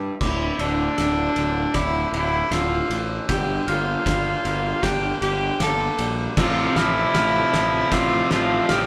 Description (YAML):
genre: post-rock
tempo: 78 BPM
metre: 4/4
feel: straight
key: D minor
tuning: A4 = 440 Hz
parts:
  - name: glockenspiel with soft plastic mallets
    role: arpeggios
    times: 0.0-8.9 s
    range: D6 to G6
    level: -32 LUFS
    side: equal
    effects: none
  - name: twangy electric guitar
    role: arpeggios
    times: 0.0-8.9 s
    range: D2 to C5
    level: -36 LUFS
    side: equal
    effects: none
  - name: fuzz fingered electric bass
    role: bass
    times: 0.0-8.9 s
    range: D1 to Bb1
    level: -29 LUFS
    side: equal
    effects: overdrive
  - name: rich cello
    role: melody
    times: 0.2-8.9 s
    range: D4 to A4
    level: -26 LUFS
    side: equal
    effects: none
  - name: loose indie drum kit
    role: drums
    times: 0.2-8.9 s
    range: crash cymbal, kick drum, ride cymbal, snare drum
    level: -29 LUFS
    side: equal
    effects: none
  - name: biting overdriven guitar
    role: riff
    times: 6.4-8.9 s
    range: F2 to F3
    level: -25 LUFS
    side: equal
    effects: none
room: wet stone room reverb, RT60 1.3 s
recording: band playing live in one room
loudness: -22 LUFS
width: mono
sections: 0.2-8.9 A section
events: build-up 0.2-8.9; drum fill 0.2-8.9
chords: 0.2 Dsus2; 3.3 Gm; 6.4 F/A